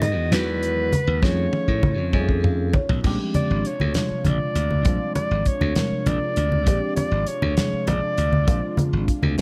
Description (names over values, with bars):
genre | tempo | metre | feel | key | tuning
electric jazz fusion | 66 BPM (dotted quarters) | 6/8 | straight | Bb mixolydian from 3.0 s | A4 = 440 Hz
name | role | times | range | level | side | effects
breathy soprano saxophone | melody | 0.0-8.8 s | B4 to D#5 | -29 LUFS | equal | none
tine electric piano | accompaniment | 0.0-9.4 s | C3 to F5 | -30 LUFS | equal | phaser
phased analog pad | sustained chords | 0.0-9.4 s | C3 to F#4 | -36 LUFS | equal | none
glassy slap bass | bass | 0.0-9.3 s | Ab1 to A2 | -26 LUFS | equal | none
damped 70s drum kit | drums | 0.0-9.4 s | crash cymbal, hi-hat, kick drum, snare drum, toms | -26 LUFS | equal | none
congas | percussion | 0.0-9.4 s | none | -28 LUFS | equal | none
room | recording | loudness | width
light reverb, small room reverb | none | -22 LUFS | mono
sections
0.0-3.0 A section; 3.0-9.4 B section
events
drum fill 1.2-3.0; tine electric piano fill 2.1-3.0; soprano saxophone solo 3.0-9.4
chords
0.0 Emaj9; 1.2 F7alt; 3.0 Bb13